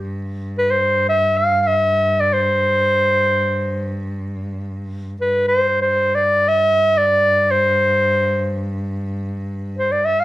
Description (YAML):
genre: Turkish makam ensemble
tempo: free time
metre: none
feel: none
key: G makam hicaz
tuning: A4 = 440 Hz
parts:
  - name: rich cello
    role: drone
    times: 0.0-10.2 s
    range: G2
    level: -24 LUFS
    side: equal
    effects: none
  - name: clear clarinet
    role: melody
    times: 0.6-10.2 s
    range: B4-22c to F5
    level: -15 LUFS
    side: equal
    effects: slapback echo
room: light reverb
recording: close, detailed microphones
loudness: -15 LUFS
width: side -16 dB against mid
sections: 0.0-10.2 A section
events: none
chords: none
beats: free time